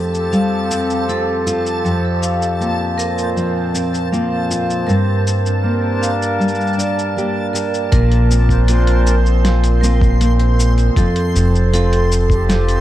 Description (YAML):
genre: folktronica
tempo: 79 BPM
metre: 4/4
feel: straight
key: Bb major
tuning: A4 = 440 Hz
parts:
  - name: vibraphone with hard mallets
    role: second line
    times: 0.0-12.8 s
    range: A4 to F5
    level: -22 LUFS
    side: right 4 dB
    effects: ping-pong delay
  - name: hand-pumped harmonium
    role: sustained chords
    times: 0.0-12.8 s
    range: F2 to A5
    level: -23 LUFS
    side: left 1 dB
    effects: none
  - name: nylon-string guitar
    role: arpeggios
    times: 0.0-12.8 s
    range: F2 to G4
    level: -19 LUFS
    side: left 1 dB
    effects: digital delay
  - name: backwards swelling texture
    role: texture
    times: 0.0-12.8 s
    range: A5 to C6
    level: -28 LUFS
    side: left 1 dB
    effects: built-in reverb
  - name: lo-fi sampler-style drum kit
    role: drums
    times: 0.1-12.8 s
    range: cabasa, hi-hat, snare drum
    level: -24 LUFS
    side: left 1 dB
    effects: overdrive
  - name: round analog bass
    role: bass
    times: 7.9-12.8 s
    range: F1 to Bb1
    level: -14 LUFS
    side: equal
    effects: none
  - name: electronic kick drum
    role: drums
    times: 7.9-12.4 s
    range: none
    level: -16 LUFS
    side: equal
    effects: overdrive
room: light reverb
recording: dark, warm production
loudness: -14 LUFS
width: side -13 dB against mid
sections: 0.0-7.9 A section; 7.9-12.8 B section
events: filter sweep on harmonium 0.0-7.9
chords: 0.0 Fadd9; 1.8 Bbsus2/F; 4.9 Gm; 7.9 Bbsus2; 11.0 Fadd9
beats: 0.33 1.09 | 1.85 2.61 3.37 4.13 | 4.89 5.64 6.41 7.16 | 7.92 8.68 9.44 10.20 | 10.96 11.72 12.48